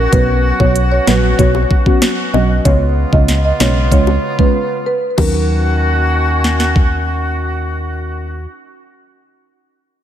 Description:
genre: dancehall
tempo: 95 BPM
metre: 4/4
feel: straight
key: Eb minor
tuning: A4 = 441 Hz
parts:
  - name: warm woodwind section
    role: sustained chords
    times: 0.0-8.5 s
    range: Db3 to Gb4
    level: -20 LUFS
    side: left 1 dB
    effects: sidechain pumping
  - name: solid FM bass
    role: bass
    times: 0.0-8.5 s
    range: Bb1 to Eb2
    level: -16 LUFS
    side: equal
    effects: none
  - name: marimba with medium mallets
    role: melody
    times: 0.1-7.0 s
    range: Bb4 to Eb5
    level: -19 LUFS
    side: right 2 dB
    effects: ping-pong delay
  - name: deep mellow chord stab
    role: accompaniment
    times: 0.1-9.2 s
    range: F#3 to F#4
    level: -19 LUFS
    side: right 1 dB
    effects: chorus
  - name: island pop drum kit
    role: drums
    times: 0.1-6.9 s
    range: crash cymbal, hi-hat, kick drum, rim click, snare drum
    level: -15 LUFS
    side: equal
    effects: overdrive
  - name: bongos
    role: percussion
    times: 0.6-5.5 s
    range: none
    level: -26 LUFS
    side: left 8 dB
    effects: none
room: moderate lush hall reverb, RT60 2.4 s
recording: dreamy mix soaked in reverb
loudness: -11 LUFS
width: side -10 dB against mid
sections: 0.0-5.2 A section; 5.2-7.7 B section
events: break 4.5-5.2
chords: 0.1 Bsus2; 2.7 Db7; 5.2 Ebm7

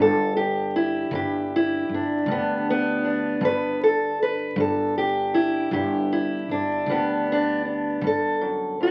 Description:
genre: acoustic country blues, solo or duo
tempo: 52 BPM (dotted quarters)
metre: 12/8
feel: straight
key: G major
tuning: A4 = 440 Hz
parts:
  - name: fingerpicked steel-string acoustic guitar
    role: melody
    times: 0.0-8.9 s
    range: E2 to B4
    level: -24 LUFS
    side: equal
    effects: none
  - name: upright bass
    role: bass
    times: 0.0-8.9 s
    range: G1 to D2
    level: -32 LUFS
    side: equal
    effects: none
  - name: kick drum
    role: drums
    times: 1.1-8.2 s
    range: none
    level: -40 LUFS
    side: equal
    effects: none
room: light reverb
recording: very old 78 rpm record, vinyl crackle, nothing above 10.8 kHz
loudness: -24 LUFS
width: mono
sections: 0.0-8.9 A section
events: none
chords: 0.0 G

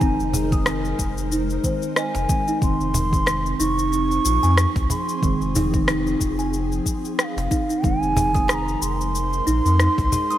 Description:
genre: organic downtempo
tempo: 92 BPM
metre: 4/4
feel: swing 56% on 16ths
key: F minor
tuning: A4 = 438 Hz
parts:
  - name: mellow bansuri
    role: melody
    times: 0.0-10.4 s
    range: F5 to Db6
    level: -25 LUFS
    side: right 2 dB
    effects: digital delay
  - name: deep mellow chord stab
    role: accompaniment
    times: 0.0-10.4 s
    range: Eb3 to C4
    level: -29 LUFS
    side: right 2 dB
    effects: chorus, phaser, cassette tape, sidechain pumping, digital delay
  - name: ethereal airy pad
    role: sustained chords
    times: 0.0-10.4 s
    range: F3 to C5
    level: -31 LUFS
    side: equal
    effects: ensemble chorus, built-in reverb, sidechain pumping
  - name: kalimba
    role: arpeggios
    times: 0.0-10.4 s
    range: Eb4 to Eb6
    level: -26 LUFS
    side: equal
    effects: digital delay
  - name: warm sub bass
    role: bass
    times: 0.0-10.1 s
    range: F1 to F2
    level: -24 LUFS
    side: equal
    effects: sidechain pumping
  - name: electronic cabasa and rim click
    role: drums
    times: 0.0-10.4 s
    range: none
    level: -26 LUFS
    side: left 1 dB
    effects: small room ambience
  - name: electronic kick drum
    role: drums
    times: 0.0-10.1 s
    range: none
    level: -24 LUFS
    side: equal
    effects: small room ambience
  - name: cajon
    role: percussion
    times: 0.3-10.3 s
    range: none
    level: -26 LUFS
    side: right 1 dB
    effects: none
room: moderate lush hall reverb, RT60 2.5 s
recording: bright 1980s-style digital production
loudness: -19 LUFS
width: side -12 dB against mid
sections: 0.0-10.4 A section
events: none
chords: 0.0 Fm7

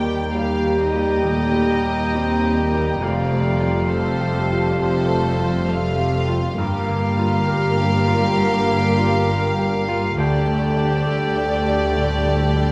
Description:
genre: cinematic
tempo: 67 BPM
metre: 4/4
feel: rubato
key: G minor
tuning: A4 = 440 Hz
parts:
  - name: rich studio violin section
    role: melody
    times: 0.0-12.7 s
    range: C5 to G5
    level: -31 LUFS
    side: equal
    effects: none
  - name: clear studio violin section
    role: second line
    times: 0.0-12.7 s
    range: F4 to A4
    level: -34 LUFS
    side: equal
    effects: none
  - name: hollow silver concert flute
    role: second line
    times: 0.0-12.7 s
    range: A5 to Bb5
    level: -31 LUFS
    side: equal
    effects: none
  - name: mellow clarinet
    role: second line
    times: 0.0-12.7 s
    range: G4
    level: -32 LUFS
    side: equal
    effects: none
  - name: mellow cor anglais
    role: second line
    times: 0.0-12.7 s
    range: F5 to G5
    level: -31 LUFS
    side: equal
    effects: none
  - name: bright baby grand piano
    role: accompaniment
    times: 0.0-12.7 s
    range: D2 to Bb4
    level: -30 LUFS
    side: equal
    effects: none
  - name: warm chamber viola section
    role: accompaniment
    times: 0.0-12.7 s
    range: F3 to C4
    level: -30 LUFS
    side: equal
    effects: none
  - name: mellow French horn section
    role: sustained chords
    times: 0.0-12.7 s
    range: G3 to Bb4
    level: -30 LUFS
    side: equal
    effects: none
  - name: concert harp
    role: arpeggios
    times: 0.0-12.7 s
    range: F2 to D5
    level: -31 LUFS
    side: equal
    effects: none
  - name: warm studio cello section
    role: bass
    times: 0.0-12.7 s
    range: D2 to G2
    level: -27 LUFS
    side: equal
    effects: none
  - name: warm studio double bass section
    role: bass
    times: 0.0-12.7 s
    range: F1 to Eb2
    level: -27 LUFS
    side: equal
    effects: none
room: moderate scoring stage reverb, RT60 1.8 s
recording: none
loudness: -20 LUFS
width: mono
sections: 0.0-12.7 A section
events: none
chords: 0.0 Eb; 3.0 Fadd9; 6.6 Gm7; 10.2 Dsus4

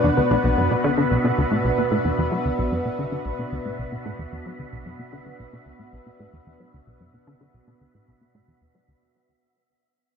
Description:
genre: ambient, sequencer-driven space music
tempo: 112 BPM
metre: 4/4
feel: straight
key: B minor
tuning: A4 = 440 Hz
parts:
  - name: lush unison pad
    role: sustained chords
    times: 0.0-9.0 s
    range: B2 to B4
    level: -25 LUFS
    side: equal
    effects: chorus, phaser
  - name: plucky analog bass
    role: riff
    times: 0.0-9.0 s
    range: B1 to F#3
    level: -24 LUFS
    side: equal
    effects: analog chorus, ping-pong delay
  - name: wind-like tuned noise texture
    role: texture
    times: 0.0-9.0 s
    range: B3 to E5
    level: -32 LUFS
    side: right 2 dB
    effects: built-in reverb
room: wet plate reverb, RT60 2.5 s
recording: none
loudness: -20 LUFS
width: side -6 dB against mid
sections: 0.0-9.0 A section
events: fade-out 0.0-9.0; filter sweep on analog synth bass 0.0-9.0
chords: 0.0 Bm

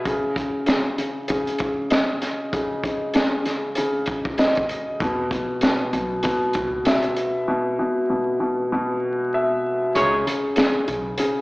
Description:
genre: hip hop, boom-bap hip-hop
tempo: 97 BPM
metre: 4/4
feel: swing 58% on 16ths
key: unclear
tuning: A4 = 441 Hz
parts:
  - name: dark grand piano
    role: accompaniment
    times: 0.0-11.4 s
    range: B2 to E5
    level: -22 LUFS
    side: equal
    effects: cassette tape, high-pass filter, low-pass filter
  - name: crunchy breakbeat drum kit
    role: drums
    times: 0.1-11.3 s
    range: hi-hat, kick drum, snare drum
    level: -23 LUFS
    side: equal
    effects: none
  - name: upright bass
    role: bass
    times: 5.0-11.1 s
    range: B1 to E2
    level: -34 LUFS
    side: equal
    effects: none
  - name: warm horn section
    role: stabs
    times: 10.0-10.2 s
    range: G#3 to C#5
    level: -22 LUFS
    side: right 1 dB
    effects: high-pass filter, low-pass filter, tape echo
room: moderate studio reverb, RT60 0.6 s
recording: played on a big sound system in a bare room, large studio reverb, vinyl crackle, AM radio sound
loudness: -20 LUFS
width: side -22 dB against mid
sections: 0.1-10.0 A section; 10.0-11.4 B section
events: kick muted 10.0-11.4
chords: 0.1 C#sus2; 5.0 E5; 10.0 C#sus2

